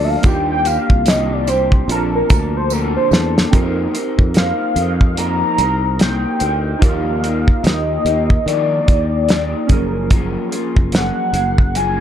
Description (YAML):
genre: indie pop, bedroom pop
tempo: 73 BPM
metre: 4/4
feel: swing 60% on 16ths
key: unclear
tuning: A4 = 441 Hz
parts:
  - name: warm velvety synth lead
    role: melody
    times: 0.0-12.0 s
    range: Bb4 to Bb5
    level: -19 LUFS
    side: equal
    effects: wide subtle chorus, slapback echo
  - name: electric guitar through a small old amp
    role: accompaniment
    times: 0.0-12.0 s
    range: Bb2 to D5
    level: -23 LUFS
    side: left 5 dB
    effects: lush chorus, warbly pitch drift
  - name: warbly lo-fi synth keys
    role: accompaniment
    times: 0.0-12.0 s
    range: F3 to A5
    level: -26 LUFS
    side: right 7 dB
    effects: chorus, cassette tape
  - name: sustaining fretless electric bass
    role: bass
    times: 0.0-12.0 s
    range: Gb1 to Eb3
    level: -20 LUFS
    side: equal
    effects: none
  - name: cloth-damped thuddy drum kit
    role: drums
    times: 0.2-12.0 s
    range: hi-hat, kick drum, snare drum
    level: -14 LUFS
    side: equal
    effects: none
  - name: tambourine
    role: percussion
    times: 0.3-3.3 s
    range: none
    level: -32 LUFS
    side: right 19 dB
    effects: none
room: light reverb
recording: dark, warm production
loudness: -14 LUFS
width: side -10 dB against mid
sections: 0.0-3.5 A section; 3.5-12.0 B section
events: soft synth lead solo 0.0-3.5; drum fill 2.7-3.5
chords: 0.3 Ebmaj7; 1.9 Bbmaj7; 3.5 F7sus4; 6.8 Ebmaj9; 9.7 Gbmaj9